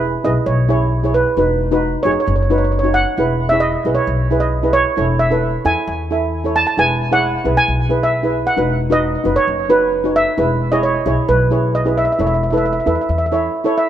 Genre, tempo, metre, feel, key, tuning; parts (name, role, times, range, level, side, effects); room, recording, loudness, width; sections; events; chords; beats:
calypso; 133 BPM; 4/4; straight; E major; A4 = 439 Hz
steel pan; accompaniment; 0.0-13.9 s; D#4 to E5; -19 LUFS; right 1 dB
upright bass; bass; 0.0-13.5 s; E1 to E2; -20 LUFS; left 1 dB
steel pan; melody; 0.2-13.9 s; B4 to A5; -17 LUFS; right 2 dB; tape echo
light reverb; -14 LUFS; side -10 dB against mid
0.0-13.9 A section
0.0 E; 1.4 B/E; 3.2 E; 5.0 Amaj7/E; 6.8 E; 8.6 B/E; 10.4 E; 12.2 A/E
0.01 0.47 0.92 | 1.37 1.82 2.27 2.72 | 3.17 3.62 4.07 4.52 | 4.97 5.42 5.87 6.32 | 6.78 7.22 7.68 8.13 | 8.58 9.03 9.48 9.93 | 10.38 10.83 11.29 11.74 | 12.19 12.64 13.09 13.54